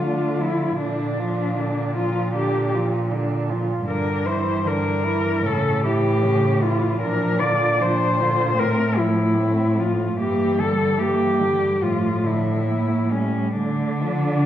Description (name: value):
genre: classical, lyrical piece for cello ensemble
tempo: 64-79 BPM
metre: 4/4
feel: rubato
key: unclear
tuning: A4 = 440 Hz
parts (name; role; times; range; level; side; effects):
- muted cello; melody; 0.0-14.5 s; C#4 to D5; -23 LUFS; left 2 dB; none
- muted cello; second line; 0.0-14.5 s; F3 to F4; -26 LUFS; right 5 dB; none
- muted cello; accompaniment; 0.0-14.5 s; C#3 to A3; -27 LUFS; equal; none
- muted cello; bass; 0.0-14.5 s; G2 to D3; -24 LUFS; right 1 dB; none
room: wet recital hall reverb, RT60 1.6 s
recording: recorded in a church or concert hall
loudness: -19 LUFS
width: side -11 dB against mid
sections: 0.0-14.5 A section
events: none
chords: 0.0 Dm; 0.8 Bb; 3.9 Em7b5/G; 5.4 A; 7.0 Bb; 8.6 F/A; 10.2 Em7b5/G; 11.8 Dm/A; 12.7 A7b9; 13.6 Dm